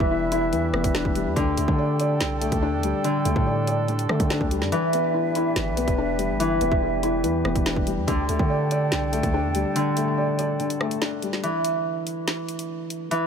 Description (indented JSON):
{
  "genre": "hip hop, drill",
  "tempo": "143 BPM",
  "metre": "4/4",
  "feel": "half-time",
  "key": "unclear",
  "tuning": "A4 = 440 Hz",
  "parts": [
    { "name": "felt-muted upright piano", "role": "accompaniment", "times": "0.0-11.5 s", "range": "D3 to D5", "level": "-26 LUFS", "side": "left 4 dB", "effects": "low-pass filter" },
    { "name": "warm woodwind section", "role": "sustained chords", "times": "0.0-11.4 s", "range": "D4 to G5", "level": "-30 LUFS", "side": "right 3 dB", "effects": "none" },
    { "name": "Celtic harp", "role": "arpeggios", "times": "0.0-13.3 s", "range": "D3 to E3", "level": "-27 LUFS", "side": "right 1 dB", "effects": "low-pass filter, ping-pong delay" },
    { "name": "long sustained 808-style bass", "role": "bass", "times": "0.0-9.6 s", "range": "E1 to D3", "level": "-27 LUFS", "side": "right 1 dB", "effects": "none" },
    { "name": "drill drum kit", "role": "drums", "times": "0.0-13.2 s", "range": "hi-hat, kick drum, rim click, snare drum", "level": "-27 LUFS", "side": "right 1 dB", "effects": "none" }
  ],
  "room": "little or no reverb",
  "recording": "none",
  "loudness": "-21 LUFS",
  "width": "side -7 dB against mid",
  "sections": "0.0-11.4 A section; 11.4-13.3 B section",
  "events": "kick muted 4.7-5.1, 9.8-11.4; break 11.4-13.3",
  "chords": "0.0 Em7; 1.4 Dsus4; 4.7 Em7; 8.1 Dsus4; 11.4 N.C."
}